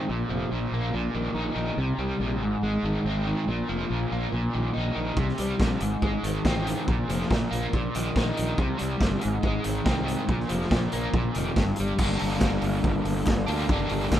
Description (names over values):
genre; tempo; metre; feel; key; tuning
indie rock; 141 BPM; 4/4; straight; unclear; A4 = 442 Hz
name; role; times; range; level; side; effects
crunchy overdriven guitar; riff; 0.0-14.2 s; G2 to Eb4; -27 LUFS; equal; harmonic tremolo
fuzz fingered electric bass; bass; 0.1-14.2 s; F1 to D2; -30 LUFS; equal; overdrive
raw garage drum kit; drums; 5.2-14.2 s; crash cymbal, hi-hat, kick drum, snare drum; -27 LUFS; equal; none
group handclap; percussion; 12.4-14.2 s; none; -40 LUFS; left 1 dB; none
room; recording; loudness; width
studio ambience; rough home demo mix; -24 LUFS; side -11 dB against mid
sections
0.0-12.0 A section; 12.0-14.2 B section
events
none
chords
0.1 Bb5; 0.9 Eb5/Bb; 1.8 C5; 2.4 Ab; 3.5 Bb5; 4.3 Eb5/Bb; 5.2 C5; 5.8 Ab; 6.9 Bb5; 7.7 Eb5/Bb; 8.6 C5; 9.2 Ab; 10.3 Bb5; 11.1 Eb5/Bb; 11.6 N.C.; 12.0 Gm